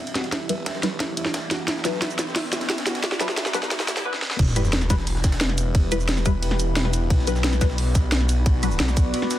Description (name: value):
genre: dark technical drum and bass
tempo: 177 BPM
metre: 4/4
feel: straight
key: E minor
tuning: A4 = 441 Hz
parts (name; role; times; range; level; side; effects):
- deep dark ambient pad; sustained chords; 0.0-9.4 s; B3 to D5; -32 LUFS; equal; chorus, built-in reverb, sidechain pumping
- felt-muted upright piano; arpeggios; 0.0-4.0 s; E4 to E5; -34 LUFS; right 2 dB; sidechain pumping, low-pass filter, digital delay
- phased detuned saw bass; bass; 0.0-9.1 s; E1 to B1; -26 LUFS; equal; phaser, overdrive, sidechain pumping, high-pass filter
- riser and sub drop; sound effects; 0.7-5.7 s; none; -32 LUFS; equal; none
- jungle sampler-style drum kit; drums; 0.1-9.4 s; hi-hat, ride cymbal, snare drum; -34 LUFS; right 1 dB; high-pass filter on cymbals, studio reverb, high-pass filter on snare, high-pass filter on hats, high-pass filter on room
- drum and bass drum kit; drums; 0.2-9.4 s; crash cymbal, hi-hat, shaker, snare drum; -25 LUFS; equal; studio reverb
- electronic kick drum; drums; 0.3-9.0 s; none; -21 LUFS; equal; high-pass filter on kick, studio reverb
- filtered dub chord stab; stabs; 0.5-8.7 s; F#3 to B4; -29 LUFS; left 3 dB; phaser, analog chorus, digital delay
room: little or no reverb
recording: dense, heavily limited modern master, high-pass filter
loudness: -20 LUFS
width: side -13 dB against mid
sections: 0.0-4.4 A section; 4.4-9.4 B section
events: build-up 0.0-4.4; drum fill 0.0-4.1, 4.1; filter sweep on felt piano 0.0-4.4; filter sweep on synth stab 0.0-4.4; riser 0.7-4.1; drop 4.4-9.4; impact 4.4-5.7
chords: 0.0 Em; 1.7 Bm; 4.4 Em; 7.1 Bm